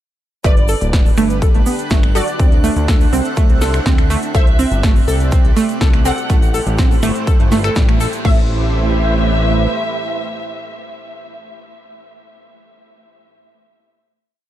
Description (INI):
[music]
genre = progressive house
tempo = 123 BPM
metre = 4/4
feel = straight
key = A dorian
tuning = A4 = 443 Hz
[part]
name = wide unison pluck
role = melody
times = 0.4-11.3 s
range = F#4 to F#5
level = -26 LUFS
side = equal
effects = none
[part]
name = dark studio violin section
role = second line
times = 0.4-11.3 s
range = D5 to F#5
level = -27 LUFS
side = left 2 dB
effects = sidechain pumping, digital delay
[part]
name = lush unison pad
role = sustained chords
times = 0.8-11.3 s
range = A3 to F#5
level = -24 LUFS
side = right 2 dB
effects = chorus, phaser, sidechain pumping
[part]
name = analog pluck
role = arpeggios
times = 0.4-8.5 s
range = G3 to A4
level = -20 LUFS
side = right 2 dB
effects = chorus, sidechain pumping, digital delay
[part]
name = fat analog bass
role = bass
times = 0.4-9.7 s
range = D1 to D2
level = -18 LUFS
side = equal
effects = sidechain pumping
[part]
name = big-room dance drum kit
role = drums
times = 0.4-8.3 s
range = crash cymbal, finger snaps, hi-hat, snare drum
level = -26 LUFS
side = equal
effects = none
[part]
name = electronic kick drum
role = drums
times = 0.4-8.3 s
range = none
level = -13 LUFS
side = equal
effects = none
[part]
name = egg shaker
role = percussion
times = 0.4-8.2 s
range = none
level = -34 LUFS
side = right 5 dB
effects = none
[part]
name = drifting glass-harmonics texture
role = texture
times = 1.1-8.3 s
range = F#6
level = -35 LUFS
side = right 5 dB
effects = chorus, built-in reverb, sidechain pumping
[sound]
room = digital ambience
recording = dark, warm production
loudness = -12 LUFS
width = side -13 dB against mid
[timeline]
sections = 0.4-8.2 drop; 8.2-12.2 final chord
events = drop 0.4-8.2; band accent 7.8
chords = 0.4 G; 2.4 D7; 4.3 C; 6.3 Am7